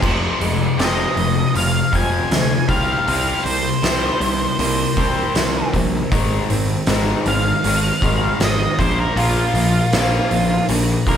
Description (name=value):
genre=quiet-loud alternative rock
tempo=79 BPM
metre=4/4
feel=straight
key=F dorian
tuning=A4 = 440 Hz
part: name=picked plugged-in steel-string acoustic guitar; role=arpeggios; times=0.0-11.2 s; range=F2 to Eb4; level=-27 LUFS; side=right 2 dB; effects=none
part: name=tight distorted guitar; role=riff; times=0.0-11.2 s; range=F2 to C4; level=-22 LUFS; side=left 4 dB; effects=distortion
part: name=fuzz picked electric bass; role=bass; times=0.0-11.2 s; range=F1 to D2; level=-22 LUFS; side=equal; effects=overdrive
part: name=oversized low-tuned drum kit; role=drums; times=0.0-11.2 s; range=crash cymbal, hi-hat, kick drum, snare drum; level=-21 LUFS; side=equal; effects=none
part: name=octave-fuzz lead guitar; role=melody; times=0.8-11.2 s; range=F4 to Ab5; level=-22 LUFS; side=right 1 dB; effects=distortion
room=moderate large studio reverb, RT60 1.2 s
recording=band playing live in one room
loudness=-15 LUFS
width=side -8 dB against mid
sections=0.0-11.2 A section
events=lead electric guitar solo 0.0-11.2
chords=0.0 Fm; 2.7 Cm7; 6.1 Ab; 8.8 Bbadd9